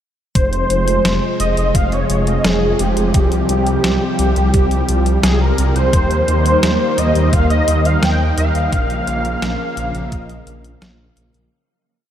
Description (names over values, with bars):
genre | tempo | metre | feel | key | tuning
synthwave | 86 BPM | 4/4 | straight | F minor | A4 = 440 Hz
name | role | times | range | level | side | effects
wide unison lead | melody | 0.4-11.1 s | G4 to G5 | -19 LUFS | equal | ensemble chorus, tape echo
lush unison pad | sustained chords | 0.4-11.5 s | C3 to Bb3 | -20 LUFS | equal | chorus, sidechain pumping
wide detuned saw bass | bass | 0.4-11.5 s | F1 to Eb2 | -18 LUFS | equal | chorus
detuned 8-bit digital drum machine | drums | 0.4-11.5 s | hi-hat, snare drum | -23 LUFS | equal | overdrive
electronic kick drum | drums | 0.4-10.3 s | none | -16 LUFS | equal | overdrive
room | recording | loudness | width
moderate huge ambient reverb, RT60 7.7 s | dreamy mix soaked in reverb | -13 LUFS | side -10 dB against mid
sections
0.4-11.5 verse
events
fade-out 7.8-11.5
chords
0.4 Fm; 3.1 Csus4; 5.9 Eb; 8.7 Bbm